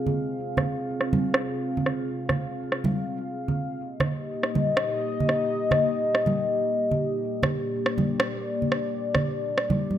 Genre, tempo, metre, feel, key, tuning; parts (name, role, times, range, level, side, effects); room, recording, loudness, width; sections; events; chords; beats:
deep dubstep; 140 BPM; 4/4; swing 57% on 16ths, half-time; A4 = 442 Hz
dark analog pad; sustained chords; 0.0-10.0 s; Bb3 to F5; -26 LUFS; left 2 dB; chorus, phaser
congas; percussion; 0.1-10.0 s; -27 LUFS; right 2 dB
electronic rim click; drums; 0.6-9.7 s; -27 LUFS; right 1 dB; overdrive, low-pass filter on snare, low-pass filter on hats, low-pass filter on cymbals
moderate lush hall reverb, RT60 1.9 s; -24 LUFS; side -10 dB against mid
0.0-10.0 A section
0.0 Fm; 3.8 Eb
| 0.36 0.79 1.22 1.65 | 2.08 2.50 2.93 3.36 | 3.79 4.22 4.65 5.08 | 5.50 5.93 6.36 6.79 | 7.22 7.65 8.08 8.51 | 8.93 9.36 9.79